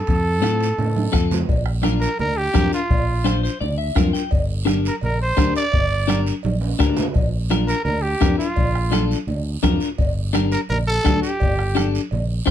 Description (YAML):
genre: latin, cumbia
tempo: 170 BPM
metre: 4/4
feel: straight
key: unclear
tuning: A4 = 438 Hz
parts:
  - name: growling trumpet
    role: melody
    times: 0.0-11.9 s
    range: F4 to D5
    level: -23 LUFS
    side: right 2 dB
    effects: none
  - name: fingered electric bass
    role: bass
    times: 0.1-12.5 s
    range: G1 to A2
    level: -22 LUFS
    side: right 1 dB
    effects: none
  - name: bombo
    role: percussion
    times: 0.1-12.5 s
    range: none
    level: -22 LUFS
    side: left 1 dB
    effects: none
  - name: congas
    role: percussion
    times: 0.1-12.5 s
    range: none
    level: -28 LUFS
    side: right 5 dB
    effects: none
  - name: guiro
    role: percussion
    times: 0.1-12.5 s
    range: none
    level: -36 LUFS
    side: right 7 dB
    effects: none
  - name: timbales and cowbell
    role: percussion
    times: 0.1-12.5 s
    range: none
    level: -31 LUFS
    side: right 4 dB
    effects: none
  - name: clean electric guitar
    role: accompaniment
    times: 0.4-12.5 s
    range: C4 to G5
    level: -22 LUFS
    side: left 7 dB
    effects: wide subtle chorus
room: moderate studio ambience, RT60 0.5 s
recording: dark, warm production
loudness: -18 LUFS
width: side -10 dB against mid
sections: 0.0-1.5 A section; 1.5-12.5 B section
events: drum fill 0.8-1.5, 6.4-7.2; clean electric guitar fill 3.3-4.3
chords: 0.1 F; 1.5 Bb; 4.3 Gm; 7.2 Bb; 10.0 Gm